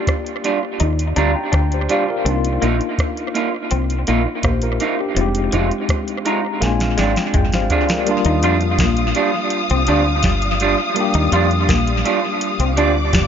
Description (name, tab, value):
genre	lovers rock reggae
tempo	83 BPM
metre	4/4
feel	straight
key	Eb major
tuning	A4 = 438 Hz
part	tine electric piano	accompaniment	0.0-13.3 s	G3 to Bb5	-23 LUFS	left 3 dB	medium stereo tremolo
part	soft vintage rhythm box	drums	0.1-13.3 s	hi-hat, kick drum, rim click, snare drum, toms	-21 LUFS	equal	tape echo
part	electric guitar through a small old amp	stabs	0.4-13.0 s	G3 to F4	-21 LUFS	right 6 dB	tape echo
part	electric guitar through a small old amp	riff	0.8-13.3 s	F3 to F4	-25 LUFS	left 7 dB	tape echo
part	deep dub fingered electric bass	bass	0.8-13.3 s	F1 to F2	-19 LUFS	equal	none
part	warm studio string section	second line	8.1-13.3 s	D5 to Eb6	-22 LUFS	left 2 dB	tape echo
room	light reverb, digital ambience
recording	nothing above 7.5 kHz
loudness	-15 LUFS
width	side -8 dB against mid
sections	0.0-8.1 A section; 8.1-13.3 B section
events	tine electric piano fill 0.8-2.3, 5.9-8.1; drum fill 6.6-8.1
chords	0.0 Ebmaj9; 2.3 Cm11; 5.2 Fm7; 6.6 Bb7; 8.1 Ebmaj9